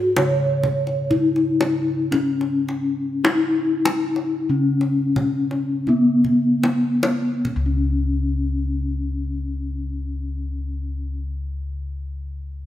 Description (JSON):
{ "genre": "Javanese gamelan", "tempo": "36-67 BPM", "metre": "4/4", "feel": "straight", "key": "unclear", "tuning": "A4 = 440 Hz", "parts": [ { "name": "gamelan-type bronze metallophone", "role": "melody", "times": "0.0-11.2 s", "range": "B3-25c to C#5", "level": "-20 LUFS", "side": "left 2 dB", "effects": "none" }, { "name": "gamelan-type bossed gongs", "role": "bass", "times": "0.0-11.1 s", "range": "C#2 to G#4", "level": "-25 LUFS", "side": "left 1 dB", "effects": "none" }, { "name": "kendang", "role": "percussion", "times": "0.2-8.2 s", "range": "none", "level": "-25 LUFS", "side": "left 1 dB", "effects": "none" } ], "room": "light reverb", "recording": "none", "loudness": "-19 LUFS", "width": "side -12 dB against mid", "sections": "0.0-7.4 A section; 7.4-12.7 B section", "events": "slowing down 0.0-7.4; drum fill 5.9-7.4", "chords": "none" }